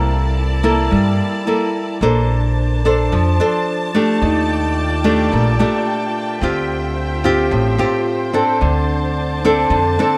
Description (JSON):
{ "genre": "bossa nova", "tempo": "109 BPM", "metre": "4/4", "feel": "straight", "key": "D minor", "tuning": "A4 = 442 Hz", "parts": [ { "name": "nylon-string guitar", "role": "accompaniment", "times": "0.0-10.2 s", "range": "A2 to C5", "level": "-19 LUFS", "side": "equal", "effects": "none" }, { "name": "warm studio string section", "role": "sustained chords", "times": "0.0-10.2 s", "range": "Bb3 to A5", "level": "-27 LUFS", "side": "equal", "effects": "none" }, { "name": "upright bass", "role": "bass", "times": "0.0-10.0 s", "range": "A1 to G2", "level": "-21 LUFS", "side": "equal", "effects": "none" } ], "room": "light reverb", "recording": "none", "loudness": "-17 LUFS", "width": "mono", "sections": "0.0-10.2 A section", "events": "none", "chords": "0.0 C13; 2.0 Bbmaj9; 4.2 Ebmaj9#11; 6.4 Dm11; 8.6 Dm7" }